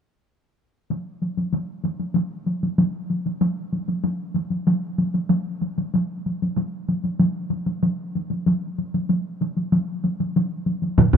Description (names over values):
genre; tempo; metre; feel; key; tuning
japanese traditional, taiko drum ensemble; 95 BPM; 4/4; straight; none; none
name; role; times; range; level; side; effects
taiko ensemble; percussion; 0.9-11.1 s; none; -22 LUFS; equal; none
solo taiko drums; percussion; 11.0-11.2 s; none; -17 LUFS; right 5 dB; none
taiko ensemble; percussion; 11.0-11.2 s; none; -15 LUFS; left 2 dB; none
room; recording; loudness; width
moderate huge ambient reverb, RT60 6.3 s; minimal, uncompressed stereo recording; -22 LUFS; side -7 dB against mid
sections
0.9-11.0 A section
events
none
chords
none